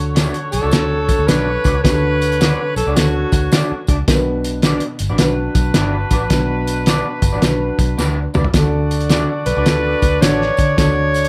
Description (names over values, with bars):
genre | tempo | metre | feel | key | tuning
uptempo 1960s-style soul | 107 BPM | 4/4 | swing 65% on 8ths | D major | A4 = 440 Hz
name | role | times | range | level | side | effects
warm horn section | second line | 0.0-11.3 s | D4 to D5 | -28 LUFS | equal | none
dark upright piano | accompaniment | 0.0-11.3 s | B2 to B4 | -25 LUFS | equal | none
vintage muted fingered electric bass | bass | 0.0-11.3 s | G1 to D3 | -23 LUFS | equal | none
electric guitar through a small old amp | stabs | 0.2-10.4 s | D4 to D5 | -26 LUFS | equal | lush chorus
cloth-damped thuddy drum kit | drums | 0.2-11.3 s | hi-hat, kick drum, snare drum, toms | -19 LUFS | equal | none
tambourine | percussion | 0.2-11.2 s | none | -37 LUFS | equal | none
warm alto saxophone | melody | 0.5-3.9, 9.5-11.3 s | F#4 to C#5 | -21 LUFS | equal | tape echo
room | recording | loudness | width
moderate club reverb, RT60 0.5 s | none | -16 LUFS | mono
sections
0.0-11.3 A section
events
drum fill 8.0-8.5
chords
0.0 D; 4.1 Bm; 8.5 D